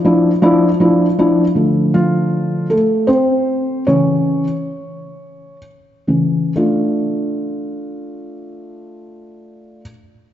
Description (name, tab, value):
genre	pop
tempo	40-53 BPM (dotted quarters)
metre	6/8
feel	straight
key	D minor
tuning	A4 = 441 Hz
part	felt-muted upright piano	solo	0.0-9.8 s	C#3 to C#5	-14 LUFS	equal	slapback echo
room	wet concert hall reverb, RT60 2.3 s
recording	dark, warm production, nothing above 7.8 kHz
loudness	-13 LUFS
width	side -11 dB against mid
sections	0.0-1.5 A section; 1.5-6.6 B section; 6.6-9.5 C section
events	slowing down 1.5-6.6; felt piano solo 1.5-6.6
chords	0.0 Dmadd9; 1.5 Dm; 3.9 C#m; 6.6 Dm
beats	0.41 | 1.54 2.69 | 3.88 5.16 | 6.56 8.04